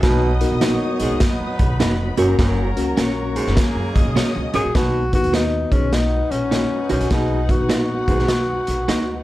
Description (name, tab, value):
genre	uptempo 1960s-style soul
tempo	102 BPM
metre	4/4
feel	swing 64% on 8ths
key	B major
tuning	A4 = 440 Hz
part	warm horn section	second line	0.0-4.5 s	C#3 to C#5	-30 LUFS	right 1 dB	analog delay
part	warm studio string section	second line	0.0-9.2 s	D#4 to D#6	-32 LUFS	left 2 dB	none
part	mellow tine electric piano	accompaniment	0.0-8.3 s	A#3 to B4	-24 LUFS	left 2 dB	medium stereo tremolo
part	overdriven tonewheel organ	sustained chords	0.0-4.7 s	F#3 to D#4	-31 LUFS	equal	none
part	raspy baritone saxophone	riff	0.0-8.2 s	F#2 to B2	-25 LUFS	right 3 dB	none
part	upright bass	bass	0.0-9.2 s	E#1 to F#2	-23 LUFS	equal	none
part	raw garage drum kit	drums	0.0-9.1 s	hi-hat, kick drum, snare drum	-21 LUFS	equal	none
part	semi-hollow electric guitar	stabs	0.6-9.0 s	C#4 to D#5	-25 LUFS	right 4 dB	spring reverb
part	breathy tenor saxophone	melody	4.5-9.2 s	C#4 to G#4	-22 LUFS	left 2 dB	none
room	light reverb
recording	dark, warm production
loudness	-16 LUFS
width	side -16 dB against mid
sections	0.0-4.7 A section; 4.7-9.2 B section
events	none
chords	0.0 B; 2.1 F#; 4.7 B